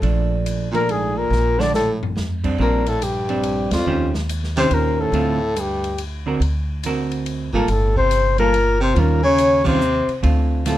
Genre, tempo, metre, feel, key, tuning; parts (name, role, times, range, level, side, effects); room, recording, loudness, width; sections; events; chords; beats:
jazz, small-group swing and bop; 141 BPM; 3/4; swing 64% on 8ths; Bb major; A4 = 439 Hz
hollow-body jazz guitar; accompaniment; 0.0-10.8 s; D3 to C5; -23 LUFS; right 4 dB
upright bass; bass; 0.0-10.8 s; G1 to F2; -22 LUFS; equal
open jazz drum kit; drums; 0.0-10.8 s; crash cymbal, hi-hat, kick drum, ride cymbal, snare drum, toms; -31 LUFS; left 1 dB
mellow flugelhorn; melody; 0.7-10.8 s; F4 to D5; -20 LUFS; left 3 dB; plate reverb
breathy baritone saxophone; second line; 0.7-10.8 s; F2 to D3; -24 LUFS; right 2 dB
moderate club ambience, RT60 0.5 s; -17 LUFS; side -14 dB against mid
0.0-2.6 A section; 2.6-10.8 B section
drum fill 1.3-2.2; band accent 3.6, 9.6
0.0 Bbmaj7; 2.6 Bb69; 3.9 Eb6; 5.1 Dm7; 6.4 D7b13; 7.7 Gmadd9; 9.0 Eb9; 10.2 Dm7
| 0.03 0.46 0.88 | 1.31 1.73 2.16 | 2.58 3.01 3.44 | 3.86 4.29 4.71 | 5.14 5.56 5.99 | 6.41 6.84 7.26 | 7.69 8.11 8.54 | 8.96 9.39 9.81 | 10.24 10.66